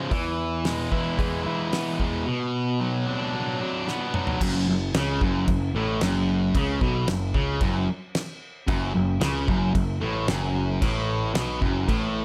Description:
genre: classic rock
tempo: 112 BPM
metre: 4/4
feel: straight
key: F# minor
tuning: A4 = 440 Hz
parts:
  - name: sludgy distorted guitar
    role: riff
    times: 0.0-12.2 s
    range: F#2 to E4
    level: -28 LUFS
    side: equal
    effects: overdrive
  - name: overdriven picked electric bass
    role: bass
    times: 0.1-12.2 s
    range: F#1 to E3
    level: -30 LUFS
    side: equal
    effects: none
  - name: damped 70s drum kit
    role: drums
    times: 0.1-12.0 s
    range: crash cymbal, hi-hat, kick drum, snare drum, toms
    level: -30 LUFS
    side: equal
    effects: none
room: light reverb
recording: none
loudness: -25 LUFS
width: mono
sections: 0.0-4.4 A section; 4.4-12.2 B section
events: drum fill 3.9-4.4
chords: 0.1 E; 2.3 Bm; 4.4 F#m

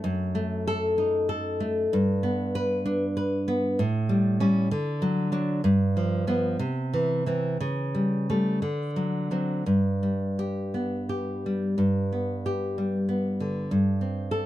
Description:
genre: romantic piece for solo classical guitar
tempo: 55-66 BPM (dotted quarters)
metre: 6/8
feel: rubato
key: G major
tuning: A4 = 440 Hz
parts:
  - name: nylon-string guitar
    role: solo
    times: 0.0-14.5 s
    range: F#2 to B4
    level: -24 LUFS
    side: equal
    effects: none
room: light reverb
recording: close, detailed microphones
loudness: -24 LUFS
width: side -14 dB against mid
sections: 0.0-11.8 A section; 11.8-14.5 A section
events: none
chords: 0.0 F#m6; 1.9 G; 3.8 A7; 4.7 D; 5.6 G7; 6.6 C; 7.6 A7/C#; 8.6 D7; 9.7 G; 13.7 Am7/G

